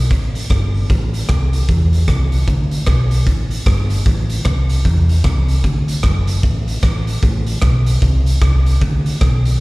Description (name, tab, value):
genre	ska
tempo	152 BPM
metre	4/4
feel	swing 61% on 8ths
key	D mixolydian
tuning	A4 = 440 Hz
part	hollow-body short-scale fingered electric bass	bass	0.0-9.6 s	F#1 to E2	-15 LUFS	equal	none
part	raw garage drum kit	drums	0.1-9.5 s	hi-hat, kick drum, rim click	-17 LUFS	equal	none
room	little or no reverb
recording	live gig heard through the venue's PA, recital hall reverb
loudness	-13 LUFS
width	side -23 dB against mid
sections	0.0-9.6 A section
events	none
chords	none